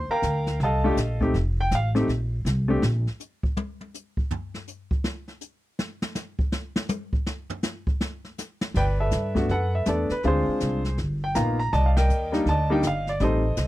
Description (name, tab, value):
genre	jazz piano trio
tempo	162 BPM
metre	4/4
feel	swing 64% on 8ths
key	G minor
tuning	A4 = 438 Hz
part	warm grand piano	melody	0.0-2.8, 8.8-13.7 s	G3 to Bb5	-24 LUFS	equal	none
part	upright bass	bass	0.0-3.0, 8.7-13.7 s	F1 to G2	-24 LUFS	equal	none
part	jazz brush drum kit	drums	0.2-13.7 s	brushed snare drum, crash cymbal, hi-hat, kick drum, ride cymbal, snare drum, toms	-29 LUFS	equal	none
room	little or no reverb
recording	dry, close 1970s-style studio recording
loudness	-23 LUFS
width	side -16 dB against mid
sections	0.0-8.8 A section; 8.8-13.7 B section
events	grand piano solo 0.0-8.8; drum solo 2.8-8.8; band accent 11.9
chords	0.0 Ebmaj9#11; 1.3 F; 2.8 N.C.; 8.8 Gmaj9; 10.2 Dm7b5; 11.0 G7alt; 11.7 Cm9